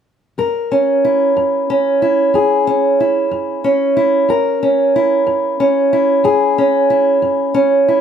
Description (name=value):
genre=blues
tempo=62 BPM (dotted quarters)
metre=12/8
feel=straight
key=F# mixolydian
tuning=A4 = 440 Hz
part: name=fingerpicked old ladder-braced acoustic guitar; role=accompaniment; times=0.4-8.0 s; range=F#2 to A#4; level=-12 LUFS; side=right 1 dB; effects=none
room=light reverb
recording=none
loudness=-12 LUFS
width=side -8 dB against mid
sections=0.4-8.0 A section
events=none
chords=0.4 F#7